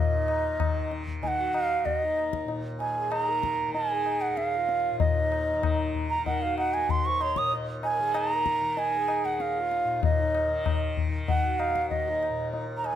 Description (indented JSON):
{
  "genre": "indian classical, Hindustani",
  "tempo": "96 BPM",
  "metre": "4/4",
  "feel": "straight",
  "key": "Eb raga bhimpalasi",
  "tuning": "A4 = 440 Hz",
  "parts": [
    { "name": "bansuri", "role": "melody", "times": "0.0-13.0 s", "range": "Eb5 to Eb6", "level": "-27 LUFS", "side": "right 3 dB", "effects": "none" },
    { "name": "pedal harmonium", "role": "second line", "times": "0.0-12.6 s", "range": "Eb4 to Eb5", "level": "-36 LUFS", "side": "left 7 dB", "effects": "none" },
    { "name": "tanpura", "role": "drone", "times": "0.0-13.0 s", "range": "Eb2 to Eb3", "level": "-36 LUFS", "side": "equal", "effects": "none" },
    { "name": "tabla", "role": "percussion", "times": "0.3-13.0 s", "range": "none", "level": "-30 LUFS", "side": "left 5 dB", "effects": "none" }
  ],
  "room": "moderate recital hall reverb, RT60 1.4 s",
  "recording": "close, detailed microphones",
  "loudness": "-25 LUFS",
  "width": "side -10 dB against mid",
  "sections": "0.0-13.0 A section",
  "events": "none",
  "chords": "none",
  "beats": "0.59 1.23 1.86 | 2.49 3.12 3.75 4.38 | 5.01 5.64 6.27 6.90 | 7.52 8.15 8.78 9.40 | 10.03 10.66 11.28 11.90 | 12.53"
}